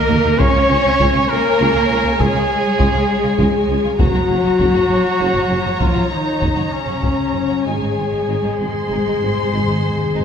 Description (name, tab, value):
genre	cinematic, epic orchestral film score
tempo	66 BPM (dotted quarters)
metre	12/8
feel	straight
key	unclear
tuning	A4 = 436 Hz
part	warm symphonic violin section	melody	0.0-10.2 s	Eb5 to C6	-26 LUFS	left 2 dB	none
part	warm symphonic violin section	second line	0.0-10.2 s	Bb3 to Db5	-26 LUFS	left 2 dB	none
part	warm symphonic viola section	accompaniment	0.0-10.2 s	Db4 to Db5	-25 LUFS	equal	none
part	dark French horn section	sustained chords	0.0-10.2 s	Db4 to Db5	-20 LUFS	left 4 dB	none
part	clear trumpet	stabs	0.0-10.2 s	Db4 to Db5	-22 LUFS	right 2 dB	none
part	rich symphonic cello section	bass	0.0-10.2 s	Db3 to Db4	-22 LUFS	right 1 dB	none
part	dark tuba	bass	0.1-10.2 s	Gb1 to Eb2	-25 LUFS	right 3 dB	none
part	warm symphonic double bass section	bass	0.1-10.2 s	Gb1 to Eb2	-25 LUFS	right 2 dB	none
part	taiko ensemble	drums	0.1-7.6 s	none	-20 LUFS	equal	none
part	timpani	percussion	7.7-10.2 s	Ab2	-25 LUFS	left 1 dB	none
room	wet recital hall reverb, RT60 1.5 s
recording	none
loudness	-14 LUFS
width	side -7 dB against mid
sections	0.0-10.2 A section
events	timpani fill 7.7-10.2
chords	0.4 Db; 4.0 Gb; 7.7 Ab